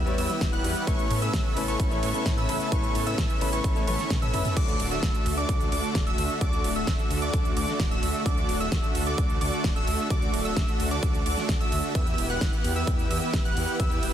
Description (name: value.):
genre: EDM, festival progressive house.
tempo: 130 BPM.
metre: 4/4.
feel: straight.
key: D major.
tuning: A4 = 435 Hz.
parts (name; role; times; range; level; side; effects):
warm grand piano; accompaniment; 0.0-4.4 s; G3 to C#5; -33 LUFS; left 6 dB; sidechain pumping, dub echo.
lush unison pad; sustained chords; 0.0-14.1 s; C#3 to A4; -36 LUFS; right 1 dB; chorus, sidechain pumping.
plucky unison lead; arpeggios; 0.0-14.1 s; C#6 to F#6; -32 LUFS; right 1 dB; sidechain pumping, dub echo.
supersaw chords; riff; 0.0-14.1 s; A3 to F#5; -31 LUFS; right 1 dB; sidechain pumping, dub echo.
detuned saw bass; bass; 0.0-14.1 s; D1 to A2; -32 LUFS; equal; sidechain pumping.
big-room dance drum kit; drums; 0.1-14.1 s; crash cymbal, hi-hat, ride cymbal, snare drum, toms; -34 LUFS; right 1 dB; none.
electronic kick drum; drums; 0.4-13.9 s; none; -26 LUFS; equal; none.
room: digital ambience.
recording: dense, heavily limited modern master.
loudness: -23 LUFS.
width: side -10 dB against mid.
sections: 0.0-4.6 A section; 4.6-14.1 A section.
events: drop 0.0-4.6, 4.6-14.1; drum fill 3.9-4.6; band accent 4.1.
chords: 0.0 Em; 0.9 Aadd9; 4.6 D; 12.0 Em.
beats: 0.41 | 0.87 1.34 1.80 2.26 | 2.72 3.18 3.64 4.11 | 4.57 5.03 5.49 5.95 | 6.41 6.87 7.34 7.80 | 8.26 8.72 9.18 9.64 | 10.11 10.57 11.03 11.49 | 11.95 12.41 12.87 13.34 | 13.80.